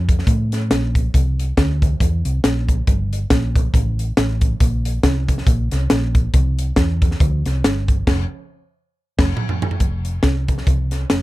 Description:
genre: uptempo gospel.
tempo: 138 BPM.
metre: 4/4.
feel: swing 58% on 8ths.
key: F major.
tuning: A4 = 440 Hz.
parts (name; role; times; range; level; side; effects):
hollow-body short-scale fingered electric bass; bass; 0.0-11.2 s; F1 to A2; -20 LUFS; equal; none.
crisp fusion drum kit; drums; 0.1-11.2 s; crash cymbal, hi-hat, kick drum, snare drum, toms; -18 LUFS; equal; none.
room: little or no reverb.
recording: none.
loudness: -16 LUFS.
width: side -18 dB against mid.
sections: 0.0-9.8 A section; 9.8-11.2 B section.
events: drum fill 8.1-9.8; band accent 8.1-9.8.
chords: none.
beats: 0.27 0.71 | 1.14 1.57 2.00 2.44 | 2.87 3.30 3.74 4.17 | 4.60 5.04 5.47 5.90 | 6.33 6.77 7.20 7.63 | 8.07 8.50 8.94 9.37 | 9.80 10.24 10.67 11.11.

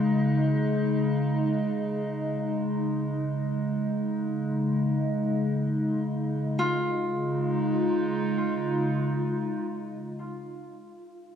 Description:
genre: ambient.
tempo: free time.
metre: none.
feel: none.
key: Db major.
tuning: A4 = 444 Hz.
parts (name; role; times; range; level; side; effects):
warbly tape-like pad; sustained chords; 0.0-10.5 s; Db3 to Eb5; -26 LUFS; equal; chorus, built-in reverb, phaser.
Celtic harp; arpeggios; 6.6-9.9 s; F4; -32 LUFS; left 1 dB; analog delay.
room: wet plate reverb, RT60 2.4 s.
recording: dreamy mix soaked in reverb, cassette tape.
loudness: -25 LUFS.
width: side -8 dB against mid.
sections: 0.0-6.6 A section; 6.6-10.2 B section.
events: none.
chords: 0.0 Gbsus2/Db (rootless); 6.6 Db.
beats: free time.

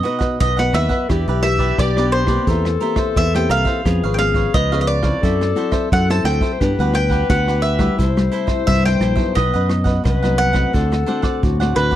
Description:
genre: samba and choro.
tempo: 87 BPM.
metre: 4/4.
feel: straight.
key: unclear.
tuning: A4 = 439 Hz.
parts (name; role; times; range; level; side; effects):
mandolin; melody; 0.0-12.0 s; B4 to A5; -22 LUFS; right 2 dB; none.
warm clarinet; second line; 0.0-12.0 s; F#4 to C5; -23 LUFS; left 12 dB; none.
cavaquinho; accompaniment; 0.0-12.0 s; D4 to F#5; -27 LUFS; right 8 dB; none.
nylon-string guitar; accompaniment; 0.0-12.0 s; F#2 to A4; -23 LUFS; left 2 dB; none.
vintage brush drum kit; drums; 0.0-12.0 s; hi-hat, kick drum, rim click; -22 LUFS; right 1 dB; none.
fingered electric bass; bass; 0.4-11.9 s; G#1 to G2; -19 LUFS; right 1 dB; none.
room: little or no reverb.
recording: dry, close 1970s-style studio recording.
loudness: -15 LUFS.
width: side -12 dB against mid.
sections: 0.0-12.0 A section.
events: none.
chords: 0.0 B; 1.1 Em7; 2.5 C7/E; 3.9 C#7; 5.2 F#m7b5; 6.6 Gmaj7; 8.0 C6; 9.4 B; 10.7 D7.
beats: 0.40 | 1.09 1.78 2.47 3.16 | 3.85 4.54 5.23 5.92 | 6.61 7.30 7.99 8.68 | 9.37 10.05 10.74 11.43.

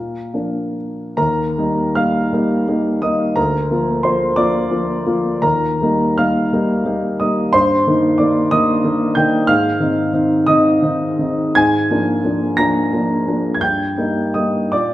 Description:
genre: classical, romantic character piece for solo piano.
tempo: 46-62 BPM (dotted quarters).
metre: 6/8.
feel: rubato.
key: Eb major.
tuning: A4 = 440 Hz.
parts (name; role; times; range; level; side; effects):
warm grand piano; solo; 0.0-14.9 s; D2 to Bb6; -14 LUFS; equal; none.
room: wet recital hall reverb, RT60 1.4 s.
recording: none.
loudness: -14 LUFS.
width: side -15 dB against mid.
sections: 0.0-1.2 A section; 1.2-14.9 B section.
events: none.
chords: 0.0 Bb; 1.2 Eb; 3.4 Bb/D; 5.4 Eb; 7.5 Eb/G; 9.5 Ab; 11.6 Bb7/Ab; 13.6 Eb/G.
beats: | 1.17 2.32 | 3.36 4.38 | 5.43 6.53 | 7.53 8.51 | 9.48 10.47 | 11.57 12.58 | 13.61 14.72.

